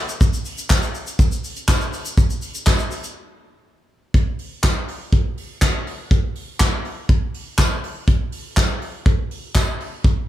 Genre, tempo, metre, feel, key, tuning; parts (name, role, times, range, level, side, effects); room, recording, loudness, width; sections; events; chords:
pop; 122 BPM; 4/4; straight
soft brush drum kit; drums; 0.1-10.2 s; handclaps, hi-hat, kick drum, shaker, snare drum; -18 LUFS; equal
tambourine; percussion; 0.7-9.7 s; -36 LUFS; left 4 dB
small room ambience; studio reverb; -18 LUFS; side -13 dB against mid
0.0-4.1 A section; 4.1-10.3 B section
break 3.2-4.1